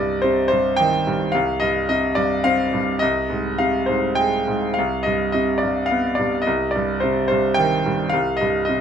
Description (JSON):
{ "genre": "classical, lyrical solo piano", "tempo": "107 BPM", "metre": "3/4", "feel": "rubato", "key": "C minor", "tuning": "A4 = 444 Hz", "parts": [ { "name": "bright concert grand piano", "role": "solo", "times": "0.0-8.8 s", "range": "C2 to G5", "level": "-18 LUFS", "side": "equal", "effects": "none" } ], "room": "light reverb", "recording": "none", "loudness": "-18 LUFS", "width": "side -8 dB against mid", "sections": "0.0-8.8 A section", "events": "none", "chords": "0.0 Cm; 1.3 Cmadd11; 3.0 Fm9/C; 4.8 G/C; 6.5 Cm; 8.1 C5", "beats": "0.23 0.78 | 1.34 1.90 2.46 | 3.03 3.60 4.19 | 4.77 5.34 5.91 | 6.47 7.03 7.58 | 8.13 8.69" }